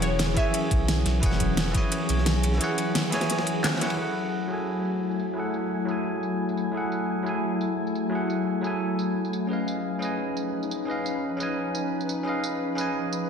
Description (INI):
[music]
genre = liquid drum and bass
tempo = 174 BPM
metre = 4/4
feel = straight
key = F# dorian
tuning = A4 = 440 Hz
[part]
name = glassy wavetable pluck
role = melody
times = 0.0-0.6 s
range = C#5 to E5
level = -31 LUFS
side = left 2 dB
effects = chorus, cassette tape, analog delay
[part]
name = bell-like tine electric piano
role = accompaniment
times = 0.0-13.3 s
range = E3 to G#5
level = -28 LUFS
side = equal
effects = low-pass filter, analog delay
[part]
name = glassy FM pad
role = sustained chords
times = 0.0-13.3 s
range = E#3 to G#5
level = -30 LUFS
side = left 2 dB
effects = ensemble chorus, built-in reverb, sidechain pumping
[part]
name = warm sub bass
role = bass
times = 0.0-2.6 s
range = E1 to B1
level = -26 LUFS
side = equal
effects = none
[part]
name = crunchy breakbeat drum kit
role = drums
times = 0.0-4.0 s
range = ride cymbal, snare drum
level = -35 LUFS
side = right 1 dB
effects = high-pass filter on cymbals, studio reverb, high-pass filter on snare, high-pass filter on room
[part]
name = pop drum kit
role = drums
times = 0.0-13.2 s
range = crash cymbal, handclaps, hi-hat, snare drum, tambourine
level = -30 LUFS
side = equal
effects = low-pass filter on snare, studio reverb, low-pass filter on hats, low-pass filter on cymbals, low-pass filter on perc
[part]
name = electronic kick drum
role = drums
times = 0.4-1.8 s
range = none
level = -25 LUFS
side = equal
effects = studio reverb
[sound]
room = wet lush hall reverb, RT60 1.5 s, digital ambience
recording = dreamy mix soaked in reverb, faint mains hum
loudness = -24 LUFS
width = side -7 dB against mid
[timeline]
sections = 0.0-4.0 A section; 4.0-13.3 B section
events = drum fill 3.6-4.0; band accent 3.9; filter sweep on drum 4.0-13.3; filter sweep on tine electric piano 4.0-13.3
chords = 0.0 E69; 4.0 F#m9; 9.5 C#9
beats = 0.19 0.54 0.88 | 1.23 1.57 1.92 2.26 | 2.61 2.95 3.30 3.64 | 3.99 4.33 4.68 5.02 | 5.37 5.71 6.06 6.40 | 6.75 7.09 7.44 7.78 | 8.12 8.47 8.81 9.16 | 9.51 9.85 10.19 10.54 | 10.88 11.23 11.57 11.92 | 12.26 12.61 12.95